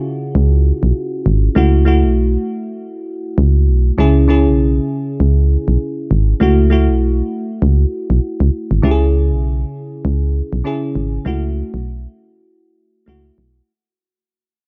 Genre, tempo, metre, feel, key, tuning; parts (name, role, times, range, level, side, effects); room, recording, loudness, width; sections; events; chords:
afrobeats; 99 BPM; 4/4; swing 58% on 16ths; C# minor; A4 = 441 Hz
bell-like FM electric piano; accompaniment; 0.0-13.7 s; C#3 to G#4; -21 LUFS; equal; chorus
solid FM bass; bass; 0.4-13.6 s; G#1 to C#2; -15 LUFS; equal
little or no reverb; -15 LUFS; mono
0.0-8.8 A section; 8.8-13.7 B section
fade-out 8.8-13.7
0.0 C#m; 1.6 F#m7; 4.0 C#m; 6.4 F#m7; 8.8 C#m; 11.3 F#m7